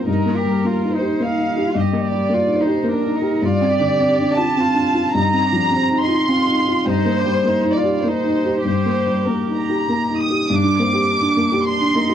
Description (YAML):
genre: neoclassical piano and strings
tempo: 97-109 BPM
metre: 3/4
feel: rubato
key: unclear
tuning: A4 = 440 Hz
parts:
  - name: dark chamber violin section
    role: melody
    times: 0.0-12.1 s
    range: Bb4 to Eb6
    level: -20 LUFS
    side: right 1 dB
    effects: none
  - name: warm cello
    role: second line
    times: 0.0-12.1 s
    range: C4 to G4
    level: -26 LUFS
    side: right 4 dB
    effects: none
  - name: felt-muted upright piano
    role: accompaniment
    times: 0.0-12.1 s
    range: G2 to G4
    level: -18 LUFS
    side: left 1 dB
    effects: none
room: moderate booth ambience, RT60 0.2 s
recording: worn, warbling old tape, cassette tape, warbly pitch drift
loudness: -16 LUFS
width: side -9 dB against mid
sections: 0.0-10.5 A section; 10.5-12.1 B section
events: none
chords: 0.1 Eb/G; 3.4 Dm7/G; 5.2 F7sus4/G; 6.9 Eb/G; 10.5 Gm